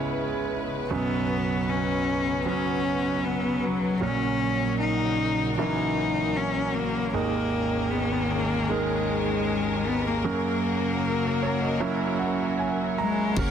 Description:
pop ballad; 77 BPM; 4/4; straight; A4 = 440 Hz
clear concert grand piano; accompaniment; 0.0-13.5 s; G#1 to A#5; -27 LUFS; right 4 dB
warm studio string section; sustained chords; 0.0-13.5 s; C#3 to C#6; -32 LUFS; left 2 dB
clear cello; melody; 0.9-13.5 s; F#3 to D#4; -27 LUFS; left 4 dB
saturated sub bass; bass; 13.4-13.5 s; F#1; -29 LUFS; equal
pop drum kit; drums; 13.4-13.5 s; crash cymbal, kick drum, toms; -26 LUFS; equal
light reverb; dense, heavily limited modern master; -23 LUFS; side -8 dB against mid
0.0-13.4 A section
grand piano fill 11.0-13.4
0.0 C#m7; 0.9 Bsus2; 4.0 F#/A#; 7.1 G#sus2; 10.3 F#
0.12 | 0.90 1.68 2.46 3.24 | 4.02 4.80 5.58 6.36 | 7.14 7.92 8.70 9.47 | 10.25 11.03 11.81 12.59 | 13.37

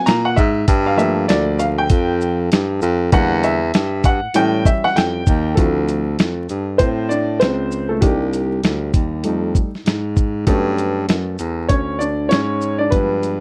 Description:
hip hop, jazz-hop; 98 BPM; 4/4; swing 62% on 16ths; A4 = 439 Hz
warm grand piano; accompaniment; 0.0-13.4 s; D3 to A#5; -22 LUFS; equal
breathy baritone saxophone; bass; 0.1-13.4 s; C2 to A#2; -22 LUFS; equal
dusty soul sampler-style drum kit; drums; 0.1-13.4 s; hi-hat, kick drum, shaker, snare drum; -20 LUFS; equal
little or no reverb; dry, close 1970s-style studio recording, vinyl crackle; -18 LUFS; mono
0.0-5.6 A section; 5.6-13.4 B section
grand piano solo 0.0-5.6, 5.6-13.4
0.0 G#7sus2; 0.7 Gm9; 3.1 Em7b5; 4.3 A7; 5.6 Dm9; 8.0 Cm7; 9.2 F9; 10.5 Gmaj9#11
0.06 | 0.68 1.29 1.90 2.51 | 3.12 3.74 4.35 4.96 | 5.57 6.19 6.80 7.41 | 8.02 8.64 9.25 9.86 | 10.47 11.09 11.70 12.31 | 12.92

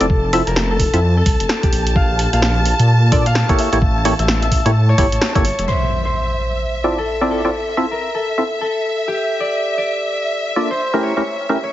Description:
UK garage, two-step garage; 129 BPM; 4/4; swing 60% on 16ths; D minor; A4 = 440 Hz
concert harp; melody; 0.0-11.7 s; G4 to F5; -22 LUFS; left 1 dB; digital delay
muted symphonic violin section; sustained chords; 0.0-11.7 s; E5 to A5; -24 LUFS; equal; sidechain pumping
percussive organ stab; stabs; 0.0-11.6 s; A3 to E5; -19 LUFS; equal; analog chorus, ping-pong delay
dark detuned saw bass; bass; 0.0-5.7 s; E1 to Bb2; -16 LUFS; equal
punchy analog drum machine; drums; 0.0-5.7 s; hi-hat, rim click, snare drum; -21 LUFS; equal; overdrive, low-pass filter on hats, low-pass filter on snare, low-pass filter on room
electronic kick drum; drums; 0.1-5.4 s; -18 LUFS; equal
impact; sound effects; 5.7-7.5 s; -23 LUFS; equal
light reverb; heavily compressed radio sound, nothing above 7.6 kHz; -14 LUFS; side -13 dB against mid
0.0-5.7 A section; 5.7-11.7 B section
band accent 5.2; impact 5.7-7.5
0.1 Fmaj7; 2.0 Bbmaj7; 3.6 A7b9; 5.7 Dm9; 7.5 Fmaj7; 9.4 Bbmaj7; 11.0 A7b9
| 0.10 0.56 1.03 1.49 | 1.96 2.42 2.89 3.35 | 3.82 4.28 4.75 5.21 | 5.68 6.14 6.61 7.08 | 7.54 8.01 8.47 8.94 | 9.40 9.87 10.33 10.80 | 11.26 11.73

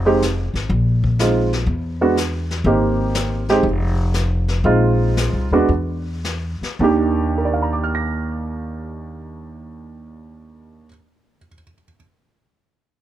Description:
jazz piano trio; 104-123 BPM; 4/4; swing 68% on 8ths; Eb major; A4 = 441 Hz
upright bass; bass; 0.0-10.8 s; F1 to E2; -21 LUFS; left 1 dB
warm baby grand piano; melody; 0.1-12.0 s; Eb2 to Bb6; -19 LUFS; right 2 dB; plate reverb
vintage brush drum kit; drums; 0.2-7.3 s; brushed snare drum, hi-hat, kick drum, snare drum; -28 LUFS; left 4 dB
light reverb; -17 LUFS; side -12 dB against mid
0.0-6.8 A section; 6.8-11.4 B section
slowing down 2.7-6.8
0.0 Fm; 0.7 Bb9sus4; 1.7 N.C.; 2.7 Abmaj9; 3.6 N.C.; 4.6 Bb9sus4; 5.7 N.C.; 6.8 Ebmaj7
0.22 | 0.70 1.19 1.68 2.17 | 2.65 3.14 3.63 4.13 | 4.64 5.16 5.69 6.24 | 6.80 7.38 7.95 8.53 | 9.10 9.68 10.25 10.82

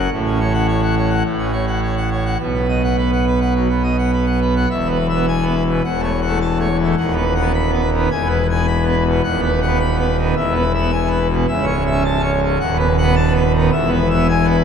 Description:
classical, organ toccata; 106 BPM; 4/4; straight; A4 = 440 Hz
pipe organ, full organ; solo; 0.0-14.6 s; C#1 to B5; -15 LUFS; equal
wet church reverb, RT60 3.2 s; -15 LUFS; side -7 dB against mid
0.0-4.7 A section; 4.7-14.6 B section
0.1 F#m/A; 2.4 B; 4.7 E; 5.8 F#m7/E; 7.0 B/D#; 8.1 E; 9.2 B/D#; 10.4 E; 11.5 A/C#; 12.6 B7/D#; 13.7 E
| 0.12 0.68 1.25 1.81 | 2.39 2.97 3.55 4.12 | 4.70 5.27 5.84 6.41 | 6.97 7.54 8.11 8.67 | 9.24 9.80 10.37 10.93 | 11.49 12.05 12.61 13.17 | 13.73 14.29

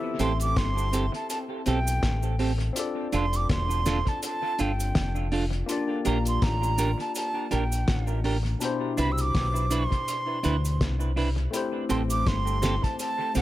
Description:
lovers rock reggae; 82 BPM; 4/4; swing 57% on 16ths; A4 = 439 Hz
barky tine electric piano; accompaniment; 0.0-13.4 s; B2 to E5; -33 LUFS; left 4 dB; phaser
breathy silver concert flute; melody; 0.2-13.4 s; G5 to E6; -31 LUFS; right 2 dB; tape echo
semi-hollow electric guitar; stabs; 0.2-13.4 s; C4 to B4; -32 LUFS; right 4 dB; dub echo
deep dub fingered electric bass; bass; 0.2-13.4 s; E1 to D2; -26 LUFS; equal
cloth-damped thuddy drum kit; drums; 0.2-13.4 s; hi-hat, kick drum, snare drum; -30 LUFS; left 1 dB; dub echo
cabasa; percussion; 0.2-13.4 s; -38 LUFS; right 5 dB
small room ambience; -24 LUFS; side -15 dB against mid
0.0-13.4 A section
0.0 Am7; 2.8 F6; 5.7 Bb6; 8.6 Cmaj9; 11.5 Am7
0.57 1.30 2.03 | 2.76 3.50 4.23 4.96 | 5.69 6.42 7.15 7.88 | 8.61 9.34 10.07 10.80 | 11.53 12.26 12.99

